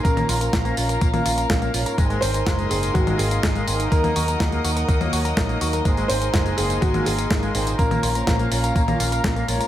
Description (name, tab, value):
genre	italo disco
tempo	124 BPM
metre	4/4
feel	straight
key	Bb minor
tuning	A4 = 440 Hz
part	warm grand piano	melody	0.0-8.7 s	Gb4 to C5	-27 LUFS	equal	ping-pong delay
part	rich chamber string section	sustained chords	0.0-9.7 s	Db4 to Eb6	-28 LUFS	left 1 dB	vintage 12-bit sampler grit
part	electric guitar with an envelope filter	arpeggios	0.0-9.7 s	Ab3 to Bb4	-29 LUFS	left 2 dB	spring reverb, digital delay
part	mellow synth brass	stabs	0.0-9.7 s	Ab2 to F5	-28 LUFS	right 3 dB	chorus, cassette tape
part	picked electric bass with an envelope filter	bass	0.0-9.6 s	Gb1 to Eb2	-25 LUFS	equal	tube saturation
part	electronic kick drum	drums	0.0-9.3 s	none	-22 LUFS	equal	none
part	clean 12-bit digital drum machine	drums	0.1-9.7 s	hi-hat, snare drum, tambourine, toms	-26 LUFS	equal	none
room	moderate plate reverb, RT60 1.1 s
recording	none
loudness	-18 LUFS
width	side -12 dB against mid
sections	0.0-9.7 A section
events	none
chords	0.0 Bbm; 2.0 Abadd9; 3.9 Ebm; 5.9 Abadd9; 7.8 Bbm